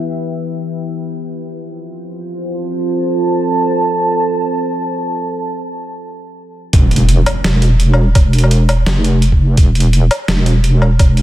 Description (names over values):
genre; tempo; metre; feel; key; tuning
half-time drum and bass; 169 BPM; 4/4; swing 58% on 16ths, half-time; unclear; A4 = 440 Hz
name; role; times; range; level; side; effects
deep dark ambient pad; sustained chords; 0.0-6.7 s; E4 to A5; -17 LUFS; right 1 dB; chorus, built-in reverb, sidechain pumping
deep soft wobble bass; bass; 6.7-11.2 s; E1 to F1; -11 LUFS; equal; chorus
boom bap sampler-style drum kit; drums; 6.7-11.2 s; hi-hat, snare drum, woodblock; -19 LUFS; equal; low-pass filter on hats, low-pass filter on perc, low-pass filter on snare, low-pass filter on room
electronic kick drum; drums; 6.7-11.1 s; none; -10 LUFS; equal; none
impact; sound effects; 6.7-8.2 s; none; -20 LUFS; equal; none
room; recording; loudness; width
moderate lush hall reverb, RT60 2.2 s; dreamy mix soaked in reverb; -12 LUFS; side -14 dB against mid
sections
0.0-6.7 A section; 6.7-11.2 B section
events
filter sweep on ambient pad 0.0-6.7; break 6.0-6.7; drop 6.7-11.2; impact 6.7-8.2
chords
0.0 Em; 1.1 F; 6.7 N.C.